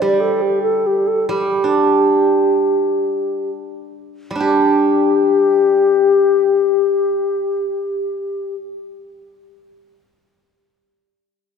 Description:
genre	chinese traditional, Chinese chamber ensemble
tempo	69-99 BPM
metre	4/4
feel	rubato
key	unclear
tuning	A4 = 441 Hz
part	bright reedy low xiao	melody	0.0-8.6 s	G4 to A4	-15 LUFS	left 2 dB	none
part	steel-string zither	accompaniment	0.0-10.4 s	G3 to G4	-20 LUFS	right 2 dB	none
room	wet church reverb, RT60 2.8 s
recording	recorded in a church or concert hall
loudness	-14 LUFS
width	side -6 dB against mid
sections	0.0-4.4 A section; 4.4-7.8 B section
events	slowing down 0.0-4.4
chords	none

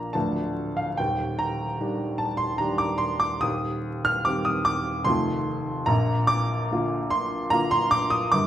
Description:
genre	classical, romantic character piece for solo piano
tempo	74 BPM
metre	3/4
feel	rubato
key	Bb major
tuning	A4 = 440 Hz
part	warm upright piano	solo	0.0-8.5 s	D1 to F6	-22 LUFS	equal	none
room	moderate recital hall reverb, RT60 1.3 s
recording	minimal, uncompressed stereo recording, vinyl crackle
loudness	-23 LUFS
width	side -11 dB against mid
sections	0.0-8.5 A section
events	none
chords	0.1 Dm; 1.0 Ebmaj7; 3.4 Cm/Eb; 5.1 F7; 5.9 Bb

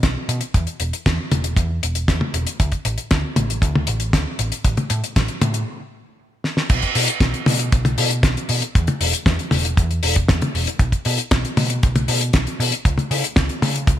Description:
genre	italo disco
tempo	117 BPM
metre	4/4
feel	straight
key	unclear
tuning	A4 = 439 Hz
part	hollow-body short-scale picked electric bass	bass	0.0-14.0 s	E1 to C#3	-23 LUFS	equal	none
part	damped 70s drum kit	drums	0.0-14.0 s	crash cymbal, hi-hat, snare drum, toms	-20 LUFS	left 2 dB	small room ambience, gated reverb
part	kick drum	drums	0.0-14.0 s	none	-17 LUFS	equal	small room ambience
room	little or no reverb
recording	bright 1980s-style digital production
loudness	-17 LUFS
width	side -12 dB against mid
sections	0.0-6.7 A section; 6.7-14.0 B section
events	stop 5.7-6.7; drum fill 6.4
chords	none

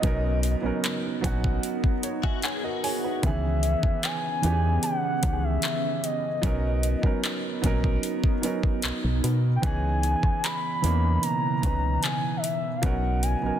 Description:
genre	contemporary R&B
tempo	75 BPM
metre	4/4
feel	straight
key	C# dorian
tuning	A4 = 441 Hz
part	gliding portamento lead	melody	0.0-13.6 s	D#5 to B5	-29 LUFS	left 1 dB	chorus, digital delay
part	warm baby grand piano	accompaniment	0.0-13.6 s	D#3 to G#5	-30 LUFS	right 4 dB	none
part	glassy FM pad	sustained chords	0.0-13.6 s	B2 to A#4	-33 LUFS	equal	ensemble chorus, built-in reverb, sidechain pumping
part	solid FM bass	bass	0.0-13.5 s	A#1 to B2	-25 LUFS	equal	none
part	smooth R&B drum kit	drums	0.0-13.4 s	handclaps, hi-hat, kick drum	-27 LUFS	equal	none
part	downlifter	sound effects	0.0-3.2 s	none	-48 LUFS	left 1 dB	none
part	direct-recorded clean electric guitar	arpeggios	2.2-3.2 s	F#4 to G#4	-33 LUFS	left 11 dB	ensemble chorus, digital delay
room	light reverb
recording	dense, heavily limited modern master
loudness	-23 LUFS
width	side -10 dB against mid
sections	0.0-13.6 A section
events	grand piano fill 1.6-3.2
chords	0.0 Bmaj7; 3.2 C#m7; 6.4 Bmaj7; 9.6 C#m7; 12.8 Bmaj7

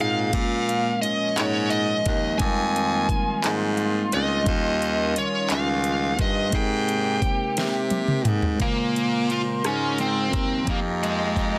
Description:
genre	slow six-eight R&B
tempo	58 BPM (dotted quarters)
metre	6/8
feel	straight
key	unclear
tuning	A4 = 444 Hz
part	smooth overdriven lead guitar	melody	0.0-11.6 s	Ab3 to Ab5	-28 LUFS	equal	slapback echo
part	mellow tine electric piano	accompaniment	0.0-11.6 s	Db3 to C5	-32 LUFS	equal	none
part	warm studio string section	sustained chords	0.0-11.6 s	Bb2 to C6	-35 LUFS	equal	none
part	clear baritone saxophone	bass	0.0-11.6 s	Db2 to C3	-28 LUFS	equal	none
part	smooth R&B drum kit	drums	0.3-11.5 s	handclaps, hi-hat, kick drum, rim click, snare drum, toms	-29 LUFS	equal	none
room	light reverb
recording	dense, heavily limited modern master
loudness	-23 LUFS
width	mono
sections	0.0-8.6 A section; 8.6-11.6 B section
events	drum fill 7.6-8.6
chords	0.3 Bbm7; 2.4 Fm11; 4.5 Eb7; 6.5 Abmaj9; 8.6 Bbm9; 10.7 Fm11

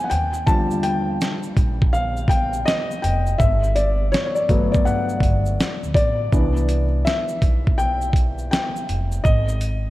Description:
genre	lo-fi hip hop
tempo	82 BPM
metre	4/4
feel	swing 63% on 16ths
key	unclear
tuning	A4 = 441 Hz
part	felt-muted upright piano	accompaniment	0.0-9.9 s	D3 to A5	-22 LUFS	left 2 dB	none
part	upright bass	bass	0.1-9.9 s	F1 to G2	-23 LUFS	equal	none
part	dusty soul sampler-style drum kit	drums	0.1-9.8 s	hi-hat, kick drum, shaker, snare drum	-20 LUFS	equal	none
room	moderate concert hall reverb, RT60 2.6 s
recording	dark, warm production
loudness	-18 LUFS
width	side -16 dB against mid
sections	0.0-9.9 A section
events	felt piano solo 0.0-9.9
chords	0.1 Ebmaj9; 3.4 Gmaj9; 6.3 Cmaj9; 9.3 Ab5

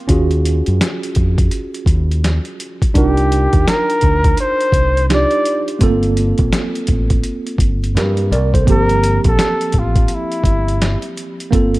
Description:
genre	hip hop, jazz-hop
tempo	84 BPM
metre	4/4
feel	swing 62% on 16ths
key	G minor, G dorian from 8.7 s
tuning	A4 = 440 Hz
part	tine electric piano	accompaniment	0.0-11.8 s	F3 to D5	-20 LUFS	right 3 dB	medium stereo tremolo
part	deep dub fingered electric bass	bass	0.1-11.8 s	G1 to G2	-16 LUFS	equal	none
part	boom bap sampler-style drum kit	drums	0.1-11.8 s	hi-hat, kick drum, snare drum	-17 LUFS	equal	none
part	breathy flugelhorn	melody	3.0-11.2 s	E4 to D5	-18 LUFS	equal	none
room	little or no reverb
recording	dark, warm production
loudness	-13 LUFS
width	side -19 dB against mid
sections	0.0-8.7 A section; 8.7-11.8 B section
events	none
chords	0.1 Ebm11; 3.0 Cm11; 5.8 Gm11

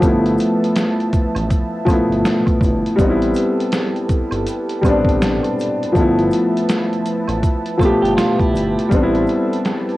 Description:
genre	lo-fi hip hop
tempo	81 BPM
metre	4/4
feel	swing 60% on 16ths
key	unclear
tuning	A4 = 442 Hz
part	dark upright piano	accompaniment	0.0-10.0 s	F3 to G4	-16 LUFS	left 1 dB	low-pass filter, cassette tape
part	dark analog pad	sustained chords	0.0-10.0 s	F3 to A5	-27 LUFS	right 2 dB	chorus, low-pass filter, cassette tape
part	smooth synth bass	bass	0.0-9.3 s	G1 to A1	-24 LUFS	equal	none
part	boom bap sampler-style drum kit	drums	0.0-10.0 s	hi-hat, kick drum, snare drum	-19 LUFS	equal	vintage 12-bit sampler grit
part	maracas and woodblock	percussion	0.0-9.9 s	none	-34 LUFS	right 5 dB	none
part	semi-hollow electric guitar	second line	7.8-8.9 s	E4 to A4	-26 LUFS	right 5 dB	low-pass filter, cassette tape, tape echo
room	moderate small room ambience, RT60 0.5 s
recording	home recording on cassette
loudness	-15 LUFS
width	side -17 dB against mid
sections	0.0-10.0 A section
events	none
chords	0.0 G13; 3.0 Am9; 5.9 G13; 8.9 Am9

